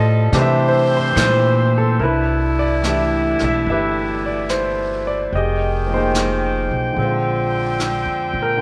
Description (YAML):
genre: jazz ballad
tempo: 72 BPM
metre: 4/4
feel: swing 69% on 8ths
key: C major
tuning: A4 = 439 Hz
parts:
  - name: warm concert grand piano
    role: accompaniment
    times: 0.0-8.6 s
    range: D3 to G5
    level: -22 LUFS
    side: equal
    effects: none
  - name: clear saxophone section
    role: sustained chords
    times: 0.0-8.6 s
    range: B2 to G5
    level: -24 LUFS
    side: equal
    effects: none
  - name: upright bass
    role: bass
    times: 0.0-8.6 s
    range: F1 to C3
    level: -23 LUFS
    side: equal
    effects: none
  - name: jazz brush drum kit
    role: drums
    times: 0.3-8.6 s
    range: brushed snare drum, hi-hat, snare drum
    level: -30 LUFS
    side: equal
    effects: none
room: moderate echo chamber reverb, RT60 1.9 s, small room ambience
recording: none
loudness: -18 LUFS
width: mono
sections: 0.0-2.0 A section; 2.0-8.6 B section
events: none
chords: 0.3 C7; 2.0 Cmaj9; 5.3 Fm9; 7.0 Bb13